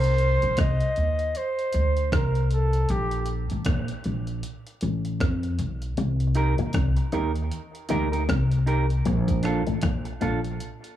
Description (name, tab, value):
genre	dub reggae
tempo	78 BPM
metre	4/4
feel	swing 59% on 16ths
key	C dorian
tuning	A4 = 440 Hz
part	concert flute	melody	0.0-3.3 s	G4 to Eb5	-27 LUFS	right 1 dB	dub echo
part	upright bass	bass	0.0-10.6 s	A1 to F2	-24 LUFS	equal	none
part	breakbeat sampler-style drum kit	drums	0.0-11.0 s	hi-hat, kick drum, rim click	-29 LUFS	equal	none
part	electric guitar with an envelope filter	riff	6.0-10.4 s	A2 to Eb3	-31 LUFS	left 10 dB	dub echo
part	clean electric guitar	accompaniment	6.4-10.4 s	D4 to Bb4	-29 LUFS	right 4 dB	dub echo
room	light reverb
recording	small room ambience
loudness	-22 LUFS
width	side -12 dB against mid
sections	0.0-11.0 A section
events	break 0.0-11.0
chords	0.0 Cm; 2.9 Bb5; 6.0 Cm7; 9.1 Bbmaj7